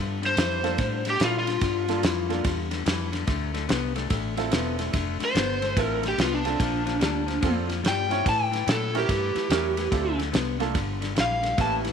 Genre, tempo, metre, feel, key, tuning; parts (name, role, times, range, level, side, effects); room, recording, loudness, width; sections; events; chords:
electric blues shuffle; 145 BPM; 4/4; swing 64% on 8ths; D minor; A4 = 440 Hz
electric guitar through a small old amp; riff; 0.0-11.9 s; G2 to B3; -31 LUFS; left 14 dB; spring reverb
vintage muted fingered electric bass; bass; 0.0-11.9 s; E1 to Bb2; -31 LUFS; right 1 dB
warm soul drum kit; drums; 0.2-11.9 s; kick drum, ride cymbal, snare drum; -28 LUFS; right 1 dB
overdriven slide guitar; melody; 0.3-2.6, 5.2-11.7 s; D4 to A5; -26 LUFS; equal
warm grand piano; accompaniment; 0.6-11.8 s; Bb3 to C#5; -32 LUFS; right 14 dB
light reverb; 1960s-style stereo with parts hard left and right; -23 LUFS; side -7 dB against mid
0.0-11.9 A section
0.0 Gm7; 3.3 Dm7; 6.6 Bbmaj7; 8.3 A7b9; 9.9 Dm7; 10.7 Gm7